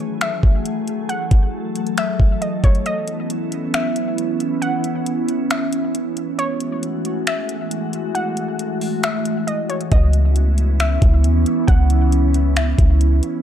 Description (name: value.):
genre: hip hop, atmospheric cloud-rap.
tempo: 136 BPM.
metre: 4/4.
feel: half-time.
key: C# minor.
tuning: A4 = 440 Hz.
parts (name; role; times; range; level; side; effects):
glassy FM pad; sustained chords; 0.0-13.4 s; E3 to A4; -22 LUFS; right 1 dB; ensemble chorus, built-in reverb, sidechain pumping, low-pass filter.
warbly dusty pluck; melody; 0.2-13.0 s; C#5 to F#5; -27 LUFS; left 1 dB; chorus, low-pass filter, ping-pong delay.
smooth R&B drum kit; drums; 0.2-13.3 s; finger snaps, hi-hat, kick drum; -18 LUFS; equal; none.
soft 808-style bass; bass; 9.9-13.2 s; C#2 to D#2; -15 LUFS; equal; none.
room: digital ambience.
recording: dark, warm production.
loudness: -16 LUFS.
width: side -10 dB against mid.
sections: 0.0-2.9 A section; 2.9-13.4 B section.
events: break 2.9-9.9.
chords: 0.0 F#m9; 2.9 C#m7; 6.4 F#m9; 9.9 C#m7.